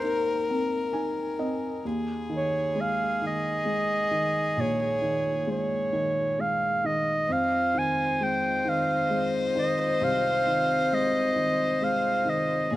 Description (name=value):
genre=acoustic folk-pop ballad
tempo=44 BPM (dotted quarters)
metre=6/8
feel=straight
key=unclear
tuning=A4 = 440 Hz
part: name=warm clarinet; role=melody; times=0.0-12.7 s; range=C5 to Ab5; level=-26 LUFS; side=right 1 dB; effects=none
part: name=warm violin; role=second line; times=0.0-12.8 s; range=Ab4 to C5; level=-30 LUFS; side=left 4 dB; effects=slapback echo
part: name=felt-muted upright piano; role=accompaniment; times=0.0-12.8 s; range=Bb1 to Ab5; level=-30 LUFS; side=equal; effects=slapback echo
part: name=warm chamber string section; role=sustained chords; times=7.3-12.8 s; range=Ab3 to Eb5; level=-41 LUFS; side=right 1 dB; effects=none
room=little or no reverb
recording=recorded outdoors, with no room sound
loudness=-24 LUFS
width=side -15 dB against mid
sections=0.0-12.8 A section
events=none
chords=0.0 Ab; 1.8 Eb7sus4; 7.3 Fm7